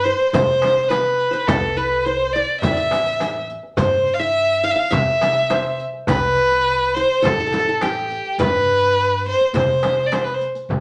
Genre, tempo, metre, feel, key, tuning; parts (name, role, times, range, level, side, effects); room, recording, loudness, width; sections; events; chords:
Arabic maqam ensemble; 104 BPM; 4/4; straight; C maqam ajam; A4 = 440 Hz
rich violin; melody; 0.0-10.4 s; G4 to F5; -20 LUFS; equal
qanun; second line; 0.0-10.6 s; G4 to F5; -27 LUFS; equal
upright bass; bass; 0.0-10.8 s; A1 to C3; -32 LUFS; equal
darbuka; percussion; 0.1-10.8 s; -30 LUFS; equal
riq; percussion; 0.1-10.6 s; -34 LUFS; equal
frame drum; percussion; 0.3-10.8 s; -27 LUFS; equal
wet studio reverb, RT60 0.6 s; -19 LUFS; mono
0.0-10.7 A section